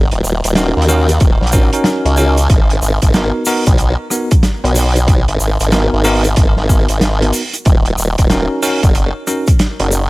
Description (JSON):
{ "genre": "glitch hop", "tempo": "93 BPM", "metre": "4/4", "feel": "swing 64% on 16ths", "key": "G# minor", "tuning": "A4 = 439 Hz", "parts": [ { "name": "formant-sweep wobble bass", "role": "bass", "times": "0.0-10.1 s", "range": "D#1 to D#2", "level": "-14 LUFS", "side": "equal", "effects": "chorus, tube saturation" }, { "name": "warm soul drum kit", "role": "drums", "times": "0.1-9.9 s", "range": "hi-hat, rim click, snare drum", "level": "-19 LUFS", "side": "right 1 dB", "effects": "none" }, { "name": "tube shaker", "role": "percussion", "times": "0.2-10.1 s", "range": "none", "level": "-24 LUFS", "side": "right 1 dB", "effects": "none" }, { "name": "bell-like tine electric piano", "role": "stabs", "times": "0.6-10.0 s", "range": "B3 to A#4", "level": "-18 LUFS", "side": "equal", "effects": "medium stereo tremolo, sidechain pumping, digital delay" }, { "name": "electronic kick drum", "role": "drums", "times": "1.2-9.6 s", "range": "none", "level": "-11 LUFS", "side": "equal", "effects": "none" } ], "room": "small room reverb", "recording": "vinyl crackle", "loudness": "-11 LUFS", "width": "side -22 dB against mid", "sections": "0.0-10.1 A section", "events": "none", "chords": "0.0 D#m7; 2.5 G#m9; 7.7 D#m7" }